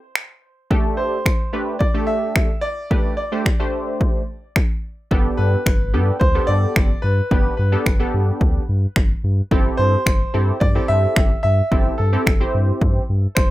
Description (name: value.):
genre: dance-pop.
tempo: 109 BPM.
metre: 4/4.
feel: straight.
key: unclear.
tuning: A4 = 438 Hz.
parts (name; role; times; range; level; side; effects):
house drum kit; drums; 0.2-13.5 s; finger snaps, kick drum; -18 LUFS; equal; none.
funky polysynth comp; accompaniment; 0.7-13.0 s; A3 to C5; -24 LUFS; right 1 dB; chorus.
bright concert grand piano; melody; 1.0-13.5 s; A4 to E5; -24 LUFS; equal; tape echo.
sub bass with octave; bass; 5.1-13.5 s; G1 to G2; -19 LUFS; equal; sidechain pumping.
room: light reverb.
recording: rough home demo mix.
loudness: -16 LUFS.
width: side -16 dB against mid.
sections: 0.0-13.5 A section.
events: none.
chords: 0.0 N.C.; 0.7 Dsus4/A; 5.1 Gadd9; 9.5 C6/G.